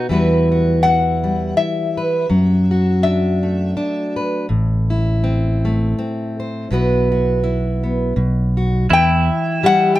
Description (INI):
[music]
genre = acoustic folk duo or small band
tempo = 82 BPM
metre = 3/4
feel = swing 56% on 8ths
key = E minor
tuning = A4 = 440 Hz
[part]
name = pedal steel guitar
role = second line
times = 0.0-0.1, 8.9-10.0 s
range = E4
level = -21 LUFS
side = right 5 dB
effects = none
[part]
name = fingerpicked plugged-in steel-string acoustic guitar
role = accompaniment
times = 0.0-10.0 s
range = A2 to C5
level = -19 LUFS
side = equal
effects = none
[part]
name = fingered electric bass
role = bass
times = 0.1-9.3 s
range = A1 to F#2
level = -18 LUFS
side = equal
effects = none
[part]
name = metal-body resonator slide guitar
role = melody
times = 0.8-4.1, 8.9-10.0 s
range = E5 to G5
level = -18 LUFS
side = left 4 dB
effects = none
[sound]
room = moderate small room ambience, RT60 0.5 s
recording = none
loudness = -15 LUFS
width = side -15 dB against mid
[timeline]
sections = 0.1-8.9 A section; 8.9-10.0 B section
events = none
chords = 0.1 Emadd9; 2.3 D6/F#; 4.5 Am; 6.7 Bsus4; 8.2 B5; 8.9 Em